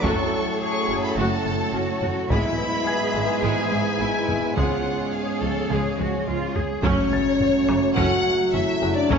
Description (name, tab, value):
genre	cinematic, hybrid orchestral and electronic film score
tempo	106 BPM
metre	4/4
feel	straight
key	F# minor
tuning	A4 = 440 Hz
part	rich chamber violin section	melody	0.0-9.2 s	C#5 to C#6	-31 LUFS	left 3 dB	none
part	warm symphonic violin section	second line	0.0-9.2 s	G#4 to F#5	-28 LUFS	left 4 dB	none
part	rich studio viola section	accompaniment	0.0-9.2 s	C#3 to G#4	-31 LUFS	equal	none
part	bright trombone section	sustained chords	0.0-9.2 s	G#2 to A3	-31 LUFS	right 3 dB	none
part	dark French horn section	sustained chords	0.0-9.2 s	A3 to G#4	-26 LUFS	left 1 dB	none
part	metallic inharmonic drone	sustained chords	0.0-9.2 s	F#3 to E5	-30 LUFS	right 1 dB	chorus, built-in reverb
part	tight sequenced synth	arpeggios	0.0-9.2 s	C#3 to C#4	-33 LUFS	right 1 dB	none
part	rich symphonic cello section	bass	0.0-9.2 s	F#2 to A4	-30 LUFS	right 2 dB	none
part	rich symphonic double bass section	bass	0.0-9.2 s	F#1 to C#2	-30 LUFS	right 4 dB	none
part	taiko ensemble	drums	0.0-9.2 s	none	-29 LUFS	equal	none
part	felt-muted upright piano	texture	0.0-9.2 s	G#5 to A6	-36 LUFS	left 1 dB	none
part	impact	sound effects	6.8-9.1 s	none	-32 LUFS	left 1 dB	none
room	wet scoring stage reverb, RT60 1.5 s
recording	nothing above 7.5 kHz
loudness	-20 LUFS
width	side -6 dB against mid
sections	0.0-6.8 A section; 6.8-9.2 B section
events	impact 6.8-9.1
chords	0.0 F#m; 2.3 E/G#; 4.6 C#; 6.8 F#m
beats	| 0.04 0.61 1.18 1.74 | 2.31 2.87 3.44 4.00 | 4.57 5.14 5.70 6.27 | 6.83 7.40 7.97 8.53 | 9.10